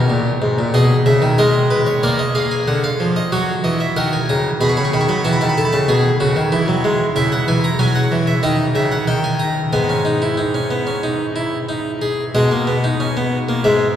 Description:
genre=classical, baroque-style 3-part fugue for harpsichord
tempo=93 BPM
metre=4/4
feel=straight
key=G# minor from 7.2 s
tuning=A4 = 442 Hz
part: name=harpsichord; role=solo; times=0.0-14.0 s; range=G#2 to C#6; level=-15 LUFS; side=equal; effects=none
room=wet cathedral reverb, RT60 6.5 s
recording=heard from further back in the room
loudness=-15 LUFS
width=side -10 dB against mid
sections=0.0-2.0 A section; 2.0-12.4 B section; 12.4-14.0 C section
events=none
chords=0.0 D#5; 0.7 G#m/B; 2.0 A#7; 3.3 D#m; 4.6 B7; 5.9 E/B; 7.2 A#dim/C# (rootless); 8.4 C#madd9; 9.1 D#; 9.7 G#m; 12.4 G#m/B (rootless)

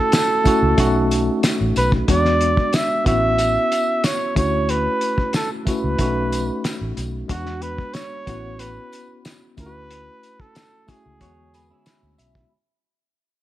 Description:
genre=lush 1970s-style soul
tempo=92 BPM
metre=4/4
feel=straight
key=unclear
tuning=A4 = 440 Hz
part: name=warm flugelhorn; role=melody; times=0.0-12.2 s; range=F#4 to E5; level=-22 LUFS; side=right 2 dB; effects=none
part: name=tine electric piano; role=accompaniment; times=0.0-12.5 s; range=D3 to B5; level=-23 LUFS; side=left 1 dB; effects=overdrive, fast stereo tremolo
part: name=cloth-damped thuddy drum kit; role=drums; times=0.1-12.5 s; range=hi-hat, kick drum, snare drum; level=-22 LUFS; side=equal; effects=none
part: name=tambourine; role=percussion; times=0.1-12.3 s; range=none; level=-35 LUFS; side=left 4 dB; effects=none
part: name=vintage muted fingered electric bass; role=bass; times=0.5-12.4 s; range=A1 to E2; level=-23 LUFS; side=equal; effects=none
part: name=electric guitar at the edge of break-up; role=riff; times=11.2-12.5 s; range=C#4 to C#5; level=-66 LUFS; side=right 6 dB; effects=analog chorus
room=studio reverb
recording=none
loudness=-17 LUFS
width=side -14 dB against mid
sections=0.0-12.5 A section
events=fade-out 0.0-12.5; tine electric piano fill 11.5-12.5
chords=0.0 Dmaj9 (rootless); 0.8 B7; 2.1 E9; 3.1 A69; 4.4 Dmaj9; 6.0 B7; 7.3 E9; 8.3 A69; 9.6 Dmaj9; 11.2 E9

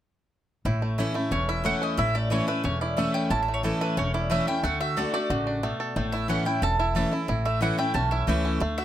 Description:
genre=bluegrass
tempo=181 BPM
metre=4/4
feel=straight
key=A major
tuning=A4 = 443 Hz
part: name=picked steel-string acoustic guitar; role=accompaniment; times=0.7-8.8 s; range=E2 to F#4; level=-28 LUFS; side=left 1 dB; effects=none
part: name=bluegrass banjo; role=arpeggios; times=0.7-8.8 s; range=A3 to A4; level=-30 LUFS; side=right 2 dB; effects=none
part: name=upright bass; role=bass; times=0.7-8.8 s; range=E1 to D2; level=-29 LUFS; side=equal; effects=none
part: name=mandolin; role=melody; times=1.3-8.8 s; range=A4 to A5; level=-29 LUFS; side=right 2 dB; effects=none
room=little or no reverb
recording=close, detailed microphones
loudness=-23 LUFS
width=side -11 dB against mid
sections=0.7-8.8 A section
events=none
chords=0.7 A; 4.6 D; 6.0 A

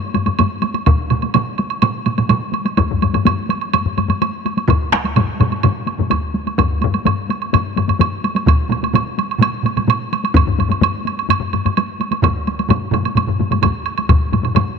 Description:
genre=japanese traditional, taiko drum ensemble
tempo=127 BPM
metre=4/4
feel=straight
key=none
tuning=none
part: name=taiko ensemble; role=percussion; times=0.1-14.7 s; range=none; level=-21 LUFS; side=left 1 dB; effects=none
part: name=taiko ensemble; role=percussion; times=0.1-14.7 s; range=none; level=-19 LUFS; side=left 6 dB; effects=none
part: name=woodblock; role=percussion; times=0.1-14.7 s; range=none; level=-21 LUFS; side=right 9 dB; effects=none
part: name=taiko ensemble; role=percussion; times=0.9-14.7 s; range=none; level=-21 LUFS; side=right 6 dB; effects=none
part: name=taiko ensemble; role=percussion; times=0.9-14.2 s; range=none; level=-18 LUFS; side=left 1 dB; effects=none
room=moderate plate reverb, RT60 3.5 s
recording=1960s-style stereo with parts hard left and right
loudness=-15 LUFS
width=side -6 dB against mid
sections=0.0-14.1 A section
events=speeding up 0.0-14.8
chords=none

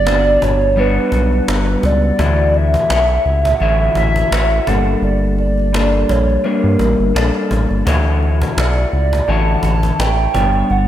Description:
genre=indie pop, bedroom pop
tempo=85 BPM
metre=4/4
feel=swing 55% on 16ths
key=unclear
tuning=A4 = 440 Hz
part: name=hollow clarinet-like synth lead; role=melody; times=0.0-10.9 s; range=Bb4 to A5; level=-18 LUFS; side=right 2 dB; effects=phaser, lush chorus, diffuse ambient delay
part: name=electric guitar through a small old amp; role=accompaniment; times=0.0-10.9 s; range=D3 to C#5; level=-19 LUFS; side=left 2 dB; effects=wide subtle chorus, vibrato effect
part: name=round analog bass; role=bass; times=0.0-10.9 s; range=G1 to G2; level=-16 LUFS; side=equal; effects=none
part: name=cajon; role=drums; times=0.1-10.8 s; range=none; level=-23 LUFS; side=equal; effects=none
room=moderate lush hall reverb, RT60 2.0 s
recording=dreamy mix soaked in reverb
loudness=-12 LUFS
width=side -11 dB against mid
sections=0.0-10.9 A section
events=none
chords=0.0 Gmaj7#11; 2.2 Dmaj9; 4.7 Gmadd9; 7.9 Dmaj9; 10.3 Gmaj7#11

